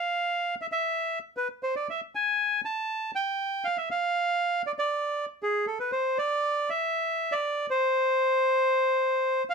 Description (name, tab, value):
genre	tango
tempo	118 BPM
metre	4/4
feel	rubato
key	unclear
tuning	A4 = 440 Hz
part	bandoneon	solo	0.0-9.5 s	G#4 to A5	-25 LUFS	equal	none
room	light reverb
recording	none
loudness	-25 LUFS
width	side -5 dB against mid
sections	0.0-9.5 A section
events	none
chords	none